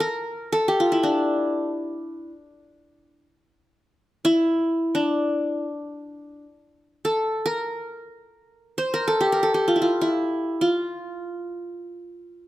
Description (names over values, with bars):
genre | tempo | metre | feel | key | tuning
Turkish makam ensemble | free time | none | none | D makam nihavent | A4 = 440 Hz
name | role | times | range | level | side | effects
qanun | solo | 0.0-12.5 s | D4 to C5 | -22 LUFS | equal | none
room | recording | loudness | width
light reverb | close, detailed microphones | -21 LUFS | side -15 dB against mid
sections
0.0-6.6 A section; 6.6-12.5 A section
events
none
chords
none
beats
free time